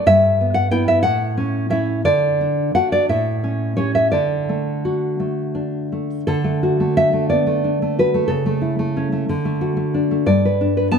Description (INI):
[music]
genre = romantic piece for solo classical guitar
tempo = 54-62 BPM (dotted quarters)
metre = 6/8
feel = rubato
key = D major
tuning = A4 = 440 Hz
[part]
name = nylon-string guitar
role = solo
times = 0.0-11.0 s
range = G2 to A5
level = -16 LUFS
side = equal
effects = none
[sound]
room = moderate scoring stage reverb, RT60 1.6 s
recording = none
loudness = -16 LUFS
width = side -6 dB against mid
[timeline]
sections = 0.0-6.3 A section; 6.3-11.0 B section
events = none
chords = 0.1 Em/G; 1.0 A; 2.1 D; 3.1 A7; 4.1 D; 8.3 A/C#; 9.3 D; 10.3 G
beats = | 0.06 1.04 | 2.05 3.09 | 4.13 5.21 | 6.28 7.30 | 8.29 9.27 | 10.25